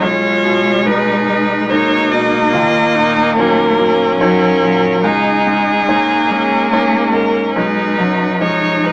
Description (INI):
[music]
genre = neoclassical piano and strings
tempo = 71 BPM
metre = 3/4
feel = rubato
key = Eb minor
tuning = A4 = 435 Hz
[part]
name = rich violin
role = melody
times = 0.0-8.9 s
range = Ab4 to Eb5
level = -18 LUFS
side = equal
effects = none
[part]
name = rich cello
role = second line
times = 0.0-8.9 s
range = F3 to Bb3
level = -20 LUFS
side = equal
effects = none
[part]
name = bright upright piano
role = accompaniment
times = 0.0-8.9 s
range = Cb2 to D#5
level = -21 LUFS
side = equal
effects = none
[part]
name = clear viola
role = accompaniment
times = 0.0-8.9 s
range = Db4 to F4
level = -20 LUFS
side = equal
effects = none
[sound]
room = moderate club reverb, RT60 0.7 s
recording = none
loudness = -14 LUFS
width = mono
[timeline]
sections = 0.0-8.9 A section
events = none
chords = 0.0 Abmadd9/Cb; 2.5 Ebm7; 5.0 Dbsus2; 7.6 B6